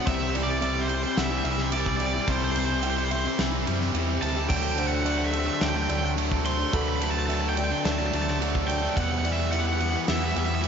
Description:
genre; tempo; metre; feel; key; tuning
post-rock; 108 BPM; 4/4; straight; unclear; A4 = 440 Hz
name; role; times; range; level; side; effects
cranked stack guitar; melody; 0.0-10.7 s; C5 to C6; -30 LUFS; right 2 dB; overdrive, slapback echo, tape echo
pedal steel guitar; sustained chords; 0.0-10.7 s; D4 to A5; -42 LUFS; left 3 dB; none
felt-muted upright piano; arpeggios; 0.0-10.7 s; A4 to G5; -37 LUFS; right 4 dB; slapback echo, tape echo
twangy electric guitar; arpeggios; 0.0-10.7 s; E2 to C4; -36 LUFS; left 2 dB; spring reverb, slapback echo, tape echo
distorted electric guitar; riff; 0.0-10.7 s; C3 to E4; -32 LUFS; right 11 dB; overdrive, slapback echo
sludgy distorted guitar; riff; 0.0-10.7 s; C3 to E4; -31 LUFS; left 13 dB; overdrive, slapback echo
fingered electric bass; bass; 0.1-10.7 s; C2 to F#2; -29 LUFS; equal; none
big rock drum kit; drums; 0.1-10.7 s; crash cymbal, kick drum, ride cymbal, snare drum; -30 LUFS; right 1 dB; none
room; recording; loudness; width
moderate lush hall reverb, RT60 1.8 s, small room ambience; big arena sound, nothing above 7.5 kHz; -23 LUFS; side -7 dB against mid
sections
0.0-10.7 A section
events
none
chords
0.1 C; 4.5 D7sus4; 9.0 Emadd9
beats
| 0.06 0.62 1.17 1.72 | 2.27 2.83 3.38 3.94 | 4.50 5.05 5.61 6.17 | 6.73 7.29 7.84 8.40 | 8.96 9.52 10.07 10.63

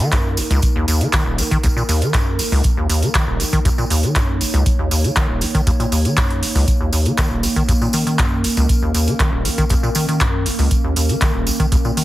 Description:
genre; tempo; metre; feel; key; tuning
acid house; 119 BPM; 4/4; straight; Eb minor; A4 = 440 Hz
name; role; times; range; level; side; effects
warbly tape-like pad; sustained chords; 0.0-12.0 s; Bb3 to Db5; -24 LUFS; equal; chorus, built-in reverb, sidechain pumping
acid bass, square; riff; 0.0-12.0 s; Eb1 to Eb3; -19 LUFS; equal; digital delay
electro analog drum machine; drums; 0.0-12.0 s; handclaps, hi-hat; -23 LUFS; right 1 dB; none
tambourine; percussion; 0.0-12.0 s; none; -27 LUFS; right 1 dB; none
electronic kick drum; drums; 0.1-11.8 s; none; -19 LUFS; equal; none
room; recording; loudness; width
light reverb; heavily compressed radio sound; -15 LUFS; side -16 dB against mid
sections
0.0-12.0 A section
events
none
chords
0.0 Eb5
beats
0.12 0.63 1.13 | 1.64 2.14 2.64 3.15 | 3.65 4.16 4.66 5.17 | 5.67 6.17 6.68 7.18 | 7.69 8.19 8.69 9.20 | 9.70 10.21 10.71 11.21 | 11.72

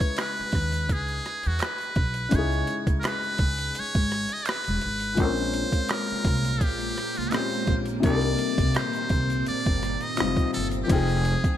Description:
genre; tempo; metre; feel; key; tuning
R&B, neo-soul; 84 BPM; 4/4; swing 53% on 16ths; unclear; A4 = 440 Hz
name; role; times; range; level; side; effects
trumpet with metal mute; melody; 0.0-11.6 s; F4 to Eb5; -29 LUFS; right 1 dB; ping-pong delay
dark upright piano; accompaniment; 0.0-11.6 s; Bb2 to G5; -30 LUFS; left 5 dB; none
boom bap sampler-style drum kit; drums; 0.0-11.6 s; crash cymbal, hi-hat, kick drum, rim click; -26 LUFS; right 1 dB; gated reverb
tube shaker and finger snaps; percussion; 0.0-11.6 s; none; -40 LUFS; right 8 dB; none
upright bass; bass; 0.4-11.3 s; Fb1 to Fb2; -28 LUFS; equal; none
phased string machine; sustained chords; 5.2-11.6 s; Bb2 to F5; -32 LUFS; right 1 dB; ensemble chorus, phaser
room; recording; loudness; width
light reverb, small room ambience; bright 1980s-style digital production; -23 LUFS; side -11 dB against mid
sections
0.0-10.9 A section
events
none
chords
0.0 Dbm9; 5.2 Bbm9; 8.0 Cm9; 10.9 Fm9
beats
0.18 0.89 1.61 | 2.32 3.04 3.75 4.46 | 5.18 5.89 6.61 7.32 | 8.04 8.75 9.46 10.18 | 10.89

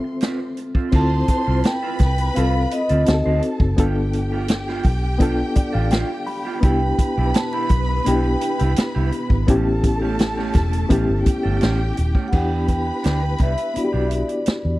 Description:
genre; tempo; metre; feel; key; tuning
lush 1970s-style soul; 84 BPM; 4/4; straight; D dorian; A4 = 440 Hz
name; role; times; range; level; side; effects
warm studio violin section; second line; 0.0-14.8 s; C4 to C6; -30 LUFS; left 2 dB; none
reed electric piano; accompaniment; 0.0-14.8 s; B3 to B5; -24 LUFS; left 2 dB; fast tremolo
electric guitar through a small old amp; riff; 0.0-14.5 s; A3 to C5; -30 LUFS; right 6 dB; spring reverb
vintage drum kit; drums; 0.2-14.6 s; crash cymbal, hi-hat, kick drum, snare drum; -19 LUFS; equal; none
vintage muted fingered electric bass; bass; 0.9-14.8 s; Eb1 to E2; -21 LUFS; equal; none
vibraphone with medium mallets; melody; 1.0-14.8 s; D5 to B5; -25 LUFS; right 1 dB; none
soft string machine; sustained chords; 6.6-12.3 s; B2 to G4; -34 LUFS; equal; none
room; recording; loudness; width
studio ambience; dry, close 1970s-style studio recording; -17 LUFS; side -18 dB against mid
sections
0.9-12.3 A section; 12.3-14.8 B section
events
reed electric piano fill 5.2-6.6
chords
0.0 Dm7 (rootless); 0.9 Dm7; 3.1 D7b9; 3.8 G7; 6.6 Cmaj7; 9.5 A7; 12.3 Em7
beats
0.22 | 0.93 1.65 2.36 3.07 | 3.78 4.49 5.21 5.92 | 6.63 7.34 8.05 8.77 | 9.48 10.19 10.90 11.62 | 12.33 13.04 13.76 14.47

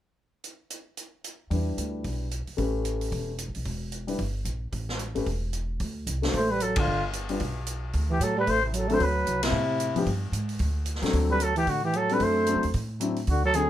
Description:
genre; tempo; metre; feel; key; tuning
jazz, small-group swing and bop; 224 BPM; 4/4; swing 60% on 8ths; D mixolydian; A4 = 441 Hz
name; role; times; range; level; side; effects
swinging big-band drum kit; drums; 0.4-13.6 s; hi-hat, kick drum, ride cymbal, snare drum; -34 LUFS; equal; none
warm concert grand piano; accompaniment; 1.5-13.7 s; F3 to C5; -29 LUFS; left 4 dB; none
upright bass; bass; 1.5-13.7 s; E1 to A2; -30 LUFS; equal; none
growling trumpet; melody; 6.4-13.7 s; E4 to C5; -26 LUFS; left 2 dB; none
breathy tenor saxophone; second line; 6.4-13.7 s; C3 to A3; -28 LUFS; right 3 dB; none
room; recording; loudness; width
light reverb; none; -25 LUFS; side -12 dB against mid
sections
0.4-1.5 A section; 1.5-5.8 B section; 5.8-13.7 C section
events
band accent 6.7, 9.4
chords
0.4 N.C.; 1.5 Em7; 2.6 A9; 3.7 Em; 4.7 A7(no3); 5.8 D7(no3); 6.9 G; 7.9 D7; 10.1 G5; 11.1 D7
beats
| 0.44 0.71 0.98 1.25 | 1.51 1.78 2.05 2.32 | 2.58 2.85 3.12 3.39 | 3.66 3.92 4.19 4.46 | 4.73 5.00 5.26 5.53 | 5.80 6.07 6.33 6.60 | 6.87 7.13 7.40 7.67 | 7.94 8.20 8.47 8.74 | 9.01 9.27 9.54 9.81 | 10.07 10.34 10.61 10.88 | 11.14 11.41 11.68 11.94 | 12.21 12.48 12.74 13.01 | 13.28 13.54

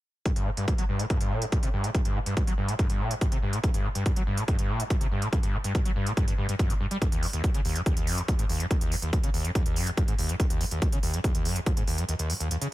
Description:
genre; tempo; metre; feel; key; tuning
driving peak-time techno; 142 BPM; 4/4; straight; G harmonic minor; A4 = 441 Hz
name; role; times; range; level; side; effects
screaming distorted acid line; riff; 0.3-12.7 s; Eb2 to G3; -29 LUFS; equal; distortion, wide subtle chorus, sidechain pumping, tape echo
electronic hi-hat; drums; 0.3-12.7 s; none; -36 LUFS; right 2 dB; small room ambience
electronic kick drum; drums; 0.3-11.7 s; none; -26 LUFS; equal; small room ambience
room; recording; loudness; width
little or no reverb; none; -24 LUFS; side -16 dB against mid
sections
0.3-12.7 A section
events
break 12.1-12.7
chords
none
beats
| 0.26 0.68 1.10 1.52 | 1.95 2.37 2.79 3.21 | 3.64 4.06 4.48 4.90 | 5.33 5.75 6.17 6.59 | 7.02 7.44 7.86 8.28 | 8.71 9.13 9.55 9.97 | 10.40 10.82 11.24 11.66 | 12.09 12.51

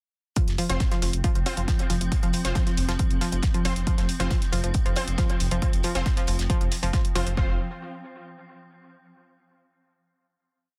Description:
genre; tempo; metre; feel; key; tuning
driving peak-time techno; 137 BPM; 4/4; straight; unclear; A4 = 440 Hz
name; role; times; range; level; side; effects
analog pluck; riff; 0.4-7.6 s; F3; -34 LUFS; equal; chorus, cassette tape, sidechain pumping, dub echo
swarming drone; drone; 1.0-7.4 s; F3 to C4; -40 LUFS; equal; built-in reverb, sidechain pumping
damped 70s drum kit; drums; 0.4-7.3 s; hi-hat, snare drum; -42 LUFS; equal; none
electronic hi-hat; drums; 0.4-7.4 s; none; -36 LUFS; equal; sidechain pumping on hats
electronic kick drum; drums; 0.4-7.5 s; none; -27 LUFS; equal; none
dark detuned saw bass; bass; 0.5-7.6 s; F1; -30 LUFS; equal; sidechain pumping
rave stab; stabs; 0.7-7.5 s; C4 to C5; -37 LUFS; equal; chorus, built-in reverb, sidechain pumping, dub echo
room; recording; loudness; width
light reverb; dense, heavily limited modern master; -25 LUFS; mono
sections
0.4-7.4 groove; 7.4-9.1 final chord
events
none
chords
0.4 F5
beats
| 0.37 0.80 1.24 1.68 | 2.12 2.56 2.99 3.43 | 3.87 4.31 4.75 5.18 | 5.62 6.06 6.50 6.93 | 7.37

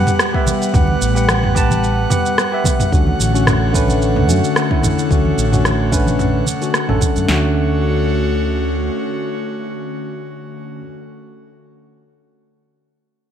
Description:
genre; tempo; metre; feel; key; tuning
sunset chillout; 110 BPM; 4/4; swing 54% on 16ths; D major; A4 = 441 Hz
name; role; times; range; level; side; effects
barky tine electric piano; accompaniment; 0.0-10.9 s; D3 to A5; -21 LUFS; left 1 dB; auto-pan, low-pass filter, digital delay
airy breathy pad; sustained chords; 0.0-10.8 s; D3 to F#5; -21 LUFS; left 1 dB; chorus
mellow fretless electric bass; bass; 0.0-8.9 s; A1 to F#2; -18 LUFS; equal; lush chorus
deep house drum kit; drums; 0.1-7.3 s; rim click, shaker, toms; -19 LUFS; right 1 dB; gated reverb
deep house drum kit; drums; 0.3-7.4 s; kick drum, snare drum; -18 LUFS; equal; gated reverb
congas; percussion; 0.5-7.1 s; none; -26 LUFS; right 2 dB; none
room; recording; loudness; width
moderate plate reverb, RT60 1.5 s; bright 1980s-style digital production; -14 LUFS; side -9 dB against mid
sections
0.0-7.3 A section; 7.3-11.6 B section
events
filter sweep on fretless electric bass 0.0-7.3; filter sweep on tine electric piano 0.0-7.3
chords
0.0 Gmaj7; 2.9 Dmaj7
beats
0.19 | 0.74 1.28 1.83 2.38 | 2.92 3.47 4.01 4.56 | 5.10 5.65 6.19 6.74 | 7.29 7.83 8.38 8.92 | 9.47 10.01 10.56

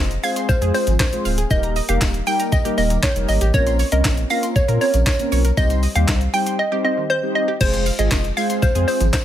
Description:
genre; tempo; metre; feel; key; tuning
dance-pop; 118 BPM; 4/4; straight; unclear; A4 = 440 Hz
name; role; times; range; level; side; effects
mellow synth brass; accompaniment; 0.0-9.1 s; G3 to Eb5; -24 LUFS; left 1 dB; chorus, sidechain pumping
wide unison pluck; arpeggios; 0.0-9.2 s; Db3 to Bb6; -29 LUFS; moving between right 1 dB and right 7 dB; auto-pan, sidechain pumping, tape echo
warm sub bass; bass; 0.0-9.1 s; D1 to Bb2; -20 LUFS; equal; sidechain pumping
breakbeat sampler-style drum kit; drums; 0.1-9.2 s; crash cymbal, handclaps, hi-hat, kick drum, shaker, snare drum; -21 LUFS; equal; none
hollow square pluck; melody; 0.2-9.2 s; C5 to G5; -22 LUFS; equal; chorus, sidechain pumping
tambourine; percussion; 0.2-9.2 s; none; -39 LUFS; left 10 dB; none
room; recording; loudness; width
little or no reverb; none; -16 LUFS; side -11 dB against mid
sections
0.0-7.6 A section; 7.6-9.2 A section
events
drop 0.0-7.6, 7.6-9.2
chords
0.0 Fm; 1.5 Eb; 3.5 Bbmadd9; 5.6 Cm; 7.6 Fm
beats
0.49 1.00 | 1.51 2.02 2.52 3.03 | 3.54 4.05 4.56 5.07 | 5.58 6.08 6.59 7.10 | 7.61 8.12 8.62 9.13

